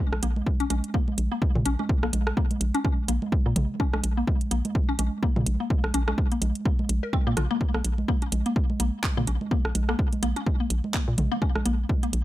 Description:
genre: minimal techno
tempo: 126 BPM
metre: 4/4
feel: swing 57% on 16ths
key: Bb minor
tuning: A4 = 442 Hz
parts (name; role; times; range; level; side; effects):
- hollow knocking FM bass; bass; 0.1-12.2 s; Bb1 to Bb2; -26 LUFS; equal; sidechain pumping
- garage drum kit; percussion; 0.1-12.0 s; congas, rim click, toms; -32 LUFS; right 2 dB; digital delay
- mallet-like synth pluck; riff; 0.2-12.1 s; Bb3 to Bb4; -30 LUFS; left 2 dB; analog chorus, vintage 12-bit sampler grit, sidechain pumping, digital delay
- garage drum kit; drums; 0.2-12.2 s; handclaps, hi-hat; -30 LUFS; right 2 dB; none
- electronic kick drum; drums; 0.5-12.0 s; none; -25 LUFS; equal; none
room: light reverb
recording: none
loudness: -23 LUFS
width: side -15 dB against mid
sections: 0.0-12.2 A section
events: none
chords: 0.0 Bb5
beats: 0.47 0.94 1.42 | 1.89 2.37 2.85 3.32 | 3.80 4.27 4.75 5.23 | 5.70 6.18 6.66 7.13 | 7.61 8.08 8.56 9.04 | 9.51 9.99 10.46 10.94 | 11.42 11.89

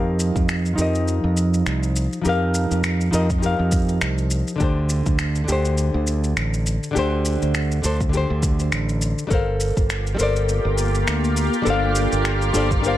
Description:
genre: sunset chillout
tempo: 102 BPM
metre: 4/4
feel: swing 57% on 16ths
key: G minor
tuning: A4 = 443 Hz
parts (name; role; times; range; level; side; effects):
- nylon-string guitar; accompaniment; 0.0-13.0 s; D3 to F5; -23 LUFS; moving between left 3 dB and right 4 dB; auto-pan, low-pass filter, digital delay
- modern bright fingered electric bass; bass; 0.0-12.9 s; G1 to F2; -22 LUFS; equal; none
- electronic shaker and finger snaps; drums; 0.2-13.0 s; none; -28 LUFS; left 1 dB; studio reverb
- electronic kick drum; drums; 0.4-12.8 s; none; -22 LUFS; equal; studio reverb
- shimmering ambient pad; sustained chords; 10.0-13.0 s; Bb3 to G4; -24 LUFS; equal; chorus, built-in reverb
room: light reverb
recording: none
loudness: -18 LUFS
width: side -13 dB against mid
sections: 0.0-13.0 A section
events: filter sweep on nylon-string guitar 0.0-13.0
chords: 0.0 F9sus4; 4.6 D7sus4; 9.3 Gm11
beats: 0.49 1.07 1.66 | 2.25 2.84 3.43 4.01 | 4.60 5.19 5.78 6.37 | 6.96 7.54 8.13 8.72 | 9.31 9.90 10.49 11.07 | 11.66 12.25 12.84

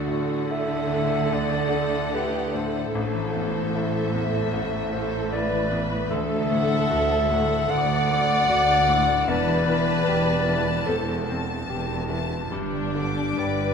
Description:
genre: cinematic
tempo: 75 BPM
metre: 4/4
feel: rubato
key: unclear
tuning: A4 = 440 Hz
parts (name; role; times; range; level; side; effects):
- rich studio violin section; melody; 0.0-13.7 s; E5 to D6; -35 LUFS; left 3 dB; none
- mellow clarinet; second line; 0.0-13.7 s; G4 to F#5; -26 LUFS; left 1 dB; none
- warm studio violin section; second line; 0.0-13.7 s; D4 to D5; -32 LUFS; left 2 dB; none
- bright concert grand piano; accompaniment; 0.0-13.7 s; A1 to G4; -31 LUFS; left 3 dB; none
- warm studio viola section; accompaniment; 0.0-13.7 s; D4 to D5; -30 LUFS; right 1 dB; none
- concert harp; arpeggios; 0.0-13.7 s; G2 to A5; -31 LUFS; left 7 dB; none
- rich studio double bass section; bass; 0.0-13.7 s; E1 to D2; -30 LUFS; right 5 dB; none
- warm studio cello section; bass; 0.0-13.7 s; D2 to D3; -30 LUFS; right 4 dB; none
room: wet scoring stage reverb, RT60 1.6 s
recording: minimal, uncompressed stereo recording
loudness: -21 LUFS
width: side -6 dB against mid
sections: 0.0-13.7 A section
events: none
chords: 0.0 Dadd9; 2.9 Am; 6.1 Dadd9; 9.3 C6/E; 12.5 G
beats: 0.51 1.33 2.14 | 2.94 3.74 4.53 5.32 | 6.11 6.91 7.70 8.49 | 9.28 10.07 10.88 11.70 | 12.52 13.39

